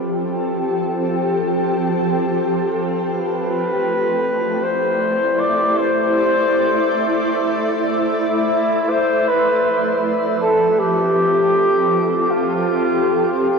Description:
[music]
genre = ambient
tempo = free time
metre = none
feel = none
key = F lydian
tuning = A4 = 440 Hz
[part]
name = shimmering ambient pad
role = sustained chords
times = 0.0-13.6 s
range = F3 to E5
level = -19 LUFS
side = equal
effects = chorus, built-in reverb, shimmer reverb
[part]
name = mellow flugelhorn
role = melody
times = 0.1-13.6 s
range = E4 to D5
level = -18 LUFS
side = left 1 dB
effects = shimmer reverb, ping-pong delay
[sound]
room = wet huge ambient reverb, RT60 9.6 s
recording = worn, warbling old tape, cassette tape, warbly pitch drift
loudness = -16 LUFS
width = side -5 dB against mid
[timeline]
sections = 0.0-9.3 A section; 9.3-13.6 B section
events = fade-in on flugelhorn 0.0-9.3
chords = 0.0 F; 3.2 Am11; 9.3 F6

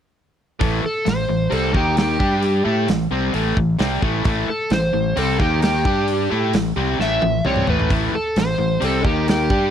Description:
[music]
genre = blues rock power trio and southern rock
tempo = 132 BPM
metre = 4/4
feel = straight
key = unclear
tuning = A4 = 440 Hz
[part]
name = overdriven semi-hollow guitar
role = riff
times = 0.6-9.7 s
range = A2 to A4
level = -21 LUFS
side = left 1 dB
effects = none
[part]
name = growling fingered electric bass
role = bass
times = 0.6-9.7 s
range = A1 to A2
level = -23 LUFS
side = equal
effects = overdrive
[part]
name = big rock drum kit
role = drums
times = 0.6-9.6 s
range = hi-hat, kick drum, snare drum, toms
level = -24 LUFS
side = right 1 dB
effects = none
[part]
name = overdriven slide guitar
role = melody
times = 0.9-9.7 s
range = G4 to E5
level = -22 LUFS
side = equal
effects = slapback echo
[sound]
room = little or no reverb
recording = dry, close 1970s-style studio recording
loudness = -17 LUFS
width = side -9 dB against mid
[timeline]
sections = 0.6-9.7 A section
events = drum fill 7.0-7.9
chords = 0.6 A5; 1.8 D#5; 2.2 G5; 2.7 A5; 5.4 D#5; 5.9 G5; 6.3 A5; 9.0 D#5

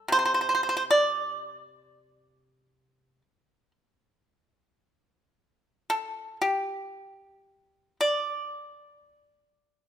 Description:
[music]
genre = chinese traditional, Chinese solo plucked strings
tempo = 55-58 BPM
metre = 4/4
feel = rubato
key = unclear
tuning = A4 = 440 Hz
[part]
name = pipa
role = solo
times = 0.0-9.9 s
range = C3 to D5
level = -24 LUFS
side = right 1 dB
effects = none
[sound]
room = light reverb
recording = minimal, uncompressed stereo recording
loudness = -24 LUFS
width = side -10 dB against mid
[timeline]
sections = 0.0-9.9 A section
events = none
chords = none

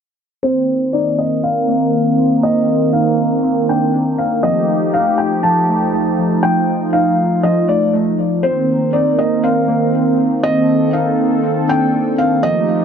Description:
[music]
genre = hip hop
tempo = 120 BPM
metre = 4/4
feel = half-time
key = C dorian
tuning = A4 = 438 Hz
[part]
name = felt-muted upright piano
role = melody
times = 0.4-12.8 s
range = C5 to A5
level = -18 LUFS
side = left 1 dB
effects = low-pass filter, digital delay
[part]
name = warm analog pad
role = sustained chords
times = 0.4-12.8 s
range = Eb3 to Bb4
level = -16 LUFS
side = right 1 dB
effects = wide subtle chorus, low-pass filter
[part]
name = warbly lo-fi synth keys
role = arpeggios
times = 0.4-12.8 s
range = F3 to Eb4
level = -20 LUFS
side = equal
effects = chorus, low-pass filter, digital delay
[sound]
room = wet booth ambience, RT60 0.2 s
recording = none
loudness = -13 LUFS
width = side -7 dB against mid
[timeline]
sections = 0.4-12.8 A section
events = filter sweep 0.4-12.8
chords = 0.4 Cm9; 4.4 F9; 8.4 Cm9

